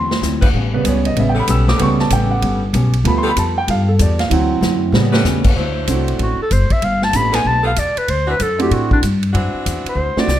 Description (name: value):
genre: jazz, big band swing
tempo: 191 BPM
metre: 4/4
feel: swing 63% on 8ths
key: unclear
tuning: A4 = 440 Hz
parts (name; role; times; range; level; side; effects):
- hollow-body jazz guitar; accompaniment; 0.0-5.5 s; A2 to A4; -24 LUFS; left 3 dB; none
- warm grand piano; accompaniment; 0.0-10.3 s; C#3 to E6; -19 LUFS; right 3 dB; none
- upright bass; bass; 0.0-10.4 s; F#1 to A2; -18 LUFS; equal; none
- swinging big-band drum kit; drums; 0.1-10.4 s; crash cymbal, hi-hat, kick drum, ride cymbal, snare drum; -20 LUFS; equal; none
- clear saxophone section; sustained chords; 0.4-10.2 s; E3 to C5; -24 LUFS; left 1 dB; none
- clear clarinet; melody; 6.2-10.4 s; D4 to B5; -18 LUFS; left 1 dB; plate reverb
room: moderate large studio reverb, RT60 0.9 s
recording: none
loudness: -14 LUFS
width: side -12 dB against mid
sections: 0.0-5.6 A section; 5.6-10.4 A section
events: drum fill 0.0, 4.6-5.2, 10.0-10.3; grand piano solo 0.0-5.6; clarinet solo 5.6-10.4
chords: 0.0 D9; 0.5 A9; 3.0 G9; 4.3 D9; 4.9 A9; 5.6 D9; 6.8 G9; 8.1 D9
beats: 0.22 | 0.54 0.85 1.16 1.48 | 1.79 2.11 2.42 2.73 | 3.05 3.36 3.68 3.99 | 4.30 4.62 4.93 5.25 | 5.56 5.88 6.19 6.51 | 6.82 7.14 7.45 7.77 | 8.08 8.40 8.71 9.03 | 9.34 9.66 9.97 10.29